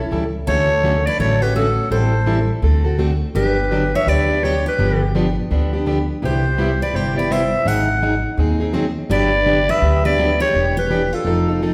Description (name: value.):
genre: acoustic string swing (jazz manouche).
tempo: 167 BPM.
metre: 4/4.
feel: swing 62% on 8ths.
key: unclear.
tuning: A4 = 442 Hz.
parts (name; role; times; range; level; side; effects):
growling clarinet; melody; 0.0-11.6 s; A4 to F#5; -22 LUFS; equal; none.
picked steel-string acoustic guitar; second line; 0.0-11.6 s; F4 to D#5; -29 LUFS; equal; none.
picked plugged-in steel-string acoustic guitar; accompaniment; 0.0-11.7 s; C3 to A4; -23 LUFS; equal; none.
upright bass; bass; 0.0-11.7 s; E1 to D#2; -22 LUFS; equal; none.
room: wet recital hall reverb, RT60 1.4 s.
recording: recorded in a church or concert hall.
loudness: -18 LUFS.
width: mono.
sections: 0.5-11.7 A section.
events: none.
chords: 0.5 Dmaj7; 1.9 Am7; 2.6 D7; 3.4 Gmaj7; 4.8 G7; 6.2 Cmaj7; 7.7 G#7; 9.1 Gmaj7; 10.5 Em7.